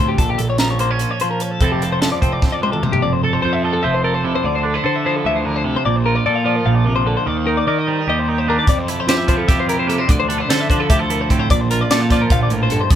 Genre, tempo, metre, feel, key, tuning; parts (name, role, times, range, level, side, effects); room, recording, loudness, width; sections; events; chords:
math rock and midwest emo; 297 BPM (eighths); 7/8; straight; F major; A4 = 440 Hz
twangy electric guitar; accompaniment; 0.0-13.0 s; F2 to C5; -20 LUFS; right 3 dB
twelve-string electric guitar; arpeggios; 0.0-13.0 s; G4 to F5; -20 LUFS; left 6 dB
fuzz picked electric bass; bass; 0.0-13.0 s; F1 to F3; -22 LUFS; right 1 dB; overdrive
crisp fusion drum kit; drums; 0.2-3.0, 8.7-13.0 s; hi-hat, kick drum, snare drum, toms; -18 LUFS; equal
moderate small room reverb, RT60 0.5 s; band playing live in one room; -15 LUFS; side -10 dB against mid
0.0-3.0 A section; 3.0-13.0 B section
drum fill 2.4-3.0
0.2 Bbm; 1.6 Fmaj7; 4.4 Dm9; 5.9 Bbmaj7; 7.3 Ebmaj7; 8.7 Fmaj9; 10.1 Dm9; 11.5 Bbmaj7